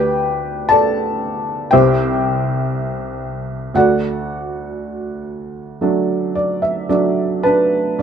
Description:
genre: classical, lyrical solo piano.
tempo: 54-60 BPM.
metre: 4/4.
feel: rubato.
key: unclear.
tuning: A4 = 440 Hz.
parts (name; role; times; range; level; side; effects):
felt-muted upright piano; solo; 0.0-8.0 s; C2 to A5; -16 LUFS; equal; none.
room: light reverb.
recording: dark, warm production.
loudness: -15 LUFS.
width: side -7 dB against mid.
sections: 0.0-8.0 A section.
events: felt piano fill 5.8-8.0.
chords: 0.0 G/D; 1.7 C; 3.8 D.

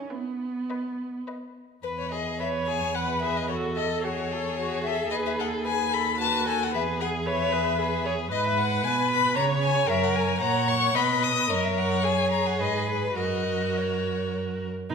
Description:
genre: quick classical-period movement for string quartet.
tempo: 101-116 BPM.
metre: 3/4.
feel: rubato.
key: E major.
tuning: A4 = 443 Hz.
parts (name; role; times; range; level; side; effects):
dark cello; bass; 0.0-14.9 s; D#2 to C#4; -30 LUFS; right 4 dB; none.
rich viola; accompaniment; 0.1-14.9 s; B3 to C#5; -30 LUFS; right 3 dB; none.
warm violin; melody; 0.7-14.9 s; B4 to D#6; -28 LUFS; left 8 dB; none.
rich violin; second line; 0.7-14.9 s; F#4 to F#5; -30 LUFS; left 1 dB; none.
room: wet recital hall reverb, RT60 1.8 s.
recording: minimal, uncompressed stereo recording.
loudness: -24 LUFS.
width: side -6 dB against mid.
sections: 0.0-1.8 A section; 1.8-14.9 B section.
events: none.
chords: 0.1 B; 1.8 E; 3.5 F#m7/E; 5.1 B7/D#; 6.7 E; 8.3 G#m; 9.4 C#5; 9.9 F#; 11.0 B; 11.5 F#; 12.6 G#m; 13.2 F#.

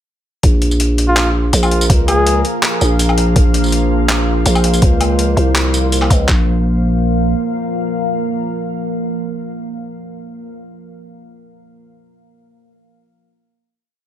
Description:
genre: half-time drum and bass.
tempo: 164 BPM.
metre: 4/4.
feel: half-time.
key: Bb minor.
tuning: A4 = 439 Hz.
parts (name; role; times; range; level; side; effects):
deep dark ambient pad; sustained chords; 1.1-10.0 s; F3 to F5; -20 LUFS; equal; chorus, built-in reverb, vintage 12-bit sampler grit, sidechain pumping.
growling 808-style bass; bass; 0.4-7.3 s; Bb1 to Db2; -14 LUFS; equal; none.
boom bap sampler-style drum kit; drums; 0.4-6.4 s; handclaps, kick drum; -13 LUFS; equal; overdrive.
boom bap sampler-style drum kit; drums; 0.4-6.2 s; handclaps, hi-hat, tambourine, woodblock; -18 LUFS; left 1 dB; overdrive.
trumpet with bucket mute; melody; 1.1-2.4 s; F4 to Ab4; -19 LUFS; left 1 dB; digital delay.
room: light reverb.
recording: none.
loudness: -12 LUFS.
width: side -11 dB against mid.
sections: 0.4-6.3 drop; 6.3-9.2 final chord.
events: drop 0.4-6.3.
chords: 0.4 Bb5.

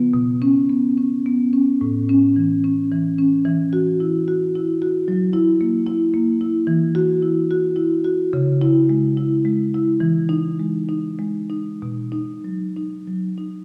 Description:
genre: classical, contemporary piece for solo marimba.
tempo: 63-75 BPM (dotted quarters).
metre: 6/8.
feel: rubato.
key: B major.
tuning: A4 = 439 Hz.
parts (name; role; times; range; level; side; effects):
marimba with soft mallets; solo; 0.0-13.6 s; A2 to F#4; -20 LUFS; equal; none.
room: wet recital hall reverb, RT60 1.6 s.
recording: heard from further back in the room.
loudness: -19 LUFS.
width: mono.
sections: 0.1-13.6 A section.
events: none.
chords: 0.1 Bsus2; 1.8 A; 3.4 Esus2; 5.1 F#7; 6.7 Esus2; 8.3 C#m; 10.0 Emaj7; 11.8 B.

